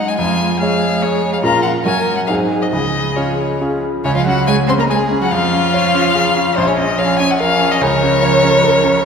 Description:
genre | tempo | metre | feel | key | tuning
quick classical-period movement for piano quartet | 143 BPM | 3/4 | rubato | Db major | A4 = 440 Hz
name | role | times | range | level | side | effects
rich violin | melody | 0.0-9.0 s | C5 to C6 | -17 LUFS | left 3 dB | none
rich cello | second line | 0.0-9.0 s | Db3 to C4 | -21 LUFS | right 5 dB | none
warm violin | second line | 0.0-9.0 s | Db4 to C5 | -20 LUFS | left 1 dB | none
clear grand piano | accompaniment | 0.0-9.1 s | Bb1 to Eb5 | -17 LUFS | right 1 dB | none
room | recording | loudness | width
wet concert hall reverb, RT60 1.9 s | minimal, uncompressed stereo recording | -12 LUFS | side -6 dB against mid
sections
0.0-4.0 A section; 4.0-9.1 B section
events
none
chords
0.2 Db/F; 1.4 Bbm; 1.9 Gb; 2.3 Ab7; 2.7 Db; 4.0 Db5; 5.3 Db/F; 6.6 Bbm; 7.8 Bbm/Db

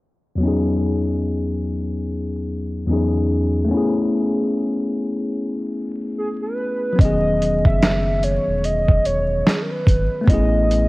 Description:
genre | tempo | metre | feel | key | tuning
lo-fi hip hop | 73 BPM | 4/4 | swing 58% on 16ths | E major | A4 = 440 Hz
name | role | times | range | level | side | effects
tine electric piano | accompaniment | 0.4-10.9 s | E2 to G#4 | -20 LUFS | left 1 dB | cassette tape
warbly nostalgic lead | melody | 6.2-10.9 s | G#4 to E5 | -21 LUFS | right 1 dB | chorus, tremolo, cassette tape
sub bass with octave | bass | 7.0-10.9 s | E1 to A1 | -22 LUFS | equal | tube saturation
dusty soul sampler-style drum kit | drums | 7.0-10.9 s | hi-hat, kick drum, snare drum | -17 LUFS | equal | overdrive
room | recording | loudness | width
light reverb, digital ambience | home recording on cassette, vinyl crackle, low-pass filter | -18 LUFS | side -20 dB against mid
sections
0.4-7.0 A section; 7.0-10.9 B section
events
filter sweep 0.4-7.0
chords
0.4 Emaj13; 3.7 Amaj9; 7.0 Emaj13; 10.3 Amaj9

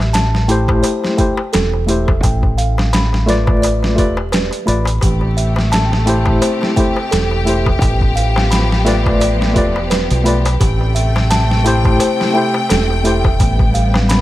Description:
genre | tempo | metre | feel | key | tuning
trip hop | 86 BPM | 4/4 | swing 56% on 16ths | A minor | A4 = 440 Hz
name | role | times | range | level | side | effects
music box | arpeggios | 0.0-14.2 s | G4 to B5 | -22 LUFS | right 2 dB | tape echo
deep dub fingered electric bass | bass | 0.0-14.2 s | E1 to B1 | -16 LUFS | equal | none
boom bap sampler-style drum kit | drums | 0.0-14.2 s | hi-hat, kick drum, snare drum | -17 LUFS | equal | overdrive, small room reverb
darbuka | percussion | 0.1-14.2 s | none | -26 LUFS | left 3 dB | none
overdriven tine electric piano | accompaniment | 0.5-13.3 s | A3 to D5 | -18 LUFS | left 1 dB | tremolo, tape echo
clear studio string section | sustained chords | 5.0-14.2 s | C3 to G5 | -21 LUFS | left 2 dB | none
room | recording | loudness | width
light reverb, small room ambience | vinyl crackle | -12 LUFS | side -15 dB against mid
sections
0.0-14.2 A section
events
none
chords
0.0 Am7; 2.2 G7/A; 5.0 Am7; 7.8 G7/A; 10.6 Am7; 13.4 G7/A

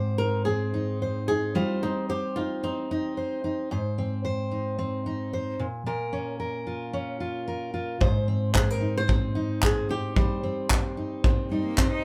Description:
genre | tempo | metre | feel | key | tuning
acoustic pop | 111 BPM | 4/4 | swing 55% on 16ths | Ab major | A4 = 443 Hz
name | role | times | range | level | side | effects
flamenco guitar | melody | 0.0-3.4, 8.6-10.9 s | Eb4 to C5 | -33 LUFS | equal | none
fingerpicked steel-string acoustic guitar | accompaniment | 0.0-12.0 s | Ab2 to C5 | -30 LUFS | equal | none
soft brush drum kit | drums | 8.0-11.9 s | handclaps, kick drum | -27 LUFS | equal | none
warm cello | second line | 11.5-12.0 s | G3 to Eb4 | -32 LUFS | equal | none
room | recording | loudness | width
moderate studio reverb, RT60 0.5 s | band playing live in one room | -27 LUFS | mono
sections
0.0-12.0 A section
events
none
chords
0.0 Ab; 1.6 Cm/G; 3.7 Ab; 5.6 Bbm; 8.0 Ab; 10.2 Cm/G

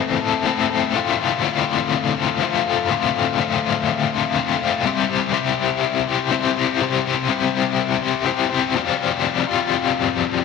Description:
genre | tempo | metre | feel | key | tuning
rock | 123 BPM | 4/4 | straight | D minor | A4 = 440 Hz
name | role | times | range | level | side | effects
overdriven electric guitar | solo | 0.0-10.4 s | D2 to C5 | -18 LUFS | left 8 dB | tremolo, slapback echo
room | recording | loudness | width
light reverb, digital ambience | none | -18 LUFS | side -4 dB against mid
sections
0.0-8.8 A section; 8.8-10.4 B section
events
none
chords
0.0 Am; 1.0 Dm7; 4.9 C; 8.8 Fsus2

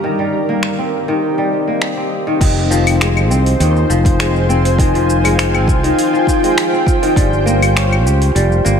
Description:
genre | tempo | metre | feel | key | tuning
organic downtempo | 101 BPM | 4/4 | straight | F minor | A4 = 440 Hz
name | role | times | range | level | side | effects
granular cloud pad | sustained chords | 0.0-8.8 s | D3 to Ab5 | -18 LUFS | right 1 dB | built-in reverb, sidechain pumping
kora | arpeggios | 0.0-8.8 s | Eb3 to G4 | -17 LUFS | left 2 dB | digital delay
deep house drum kit | drums | 0.6-8.8 s | claves, crash cymbal, finger snaps, hi-hat, shaker | -21 LUFS | left 1 dB | overdrive
fretless electric bass | bass | 2.4-8.8 s | F1 to Eb2 | -15 LUFS | equal | sidechain pumping
electronic kick drum | drums | 2.4-7.3 s | none | -15 LUFS | equal | overdrive
room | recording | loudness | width
light reverb | none | -12 LUFS | side -7 dB against mid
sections
0.0-2.4 A section; 2.4-8.8 B section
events
none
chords
0.0 Cm7; 2.4 Fm7; 7.2 Gdim

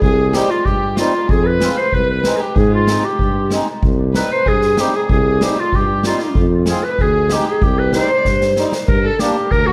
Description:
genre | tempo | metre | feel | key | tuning
klezmer | 95 BPM | 2/4 | straight | C harmonic minor | A4 = 441 Hz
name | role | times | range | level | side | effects
clear clarinet | melody | 0.0-9.7 s | F4 to C5 | -20 LUFS | equal | tape echo
warm violin | second line | 0.0-9.7 s | F4 to D5 | -26 LUFS | equal | none
mellow tuba | bass | 0.0-9.7 s | C2 to Ab2 | -21 LUFS | equal | none
street-band drum kit | drums | 0.0-9.7 s | kick drum, snare drum | -22 LUFS | equal | none
accordion | accompaniment | 0.3-9.4 s | G3 to F4 | -26 LUFS | equal | light tremolo tuning
room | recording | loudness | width
moderate recital hall reverb, RT60 1.6 s | dark, warm production | -16 LUFS | mono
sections
0.0-8.9 A section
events
drum fill 8.3-8.9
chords
0.0 Cm; 1.3 Fm; 2.6 Ab; 3.8 Cm; 6.4 Fm; 7.6 Cm; 8.9 Gm

